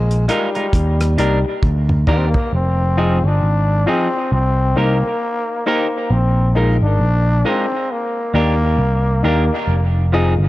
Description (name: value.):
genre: dub reggae.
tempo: 67 BPM.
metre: 4/4.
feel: swing 59% on 16ths.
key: F dorian.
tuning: A4 = 440 Hz.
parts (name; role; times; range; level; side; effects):
growling trombone; melody; 0.0-9.7 s; G3 to D4; -22 LUFS; left 1 dB; tape echo.
picked electric bass; bass; 0.0-10.5 s; F1 to Eb2; -15 LUFS; equal; none.
cloth-damped thuddy drum kit; drums; 0.1-2.5 s; hi-hat, kick drum, rim click, toms; -19 LUFS; equal; none.
semi-hollow electric guitar; accompaniment; 0.3-10.3 s; F3 to Bb4; -23 LUFS; right 2 dB; tape echo.
dark upright piano; stabs; 0.3-10.3 s; Eb4 to Eb5; -25 LUFS; left 5 dB; tape echo.
room: light reverb, small room reverb.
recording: echo-heavy mix.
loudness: -14 LUFS.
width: side -16 dB against mid.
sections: 0.0-2.5 A section; 2.5-10.5 B section.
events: drum fill 1.6-2.5.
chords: 0.0 Bb7sus4; 0.7 Ebmaj7; 2.5 Fm7; 4.3 Cm7; 6.1 Bb7sus4; 7.9 Ebmaj7; 9.7 Fm7.